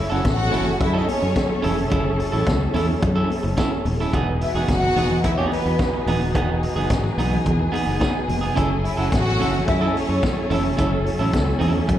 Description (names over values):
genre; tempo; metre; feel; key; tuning
disco; 108 BPM; 4/4; straight; F# dorian; A4 = 438 Hz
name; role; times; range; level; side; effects
rich studio string section; second line; 0.0-10.5 s; B3 to F#5; -25 LUFS; left 1 dB; slapback echo
warm symphonic string section; sustained chords; 0.0-12.0 s; E3 to A4; -26 LUFS; left 1 dB; none
electric guitar at the edge of break-up; accompaniment; 0.1-11.9 s; B3 to A4; -26 LUFS; right 4 dB; spring reverb, slapback echo
fingered electric bass; bass; 0.1-12.0 s; D#1 to F#2; -23 LUFS; equal; none
vintage drum kit; drums; 0.2-12.0 s; hi-hat, kick drum, snare drum; -26 LUFS; equal; none
congas; percussion; 0.2-12.0 s; none; -31 LUFS; left 2 dB; none
room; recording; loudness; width
light reverb; live gig heard through the venue's PA, club reverb; -18 LUFS; side -11 dB against mid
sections
0.0-12.0 A section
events
none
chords
0.0 F#m7; 4.1 Emaj7; 8.6 F#m7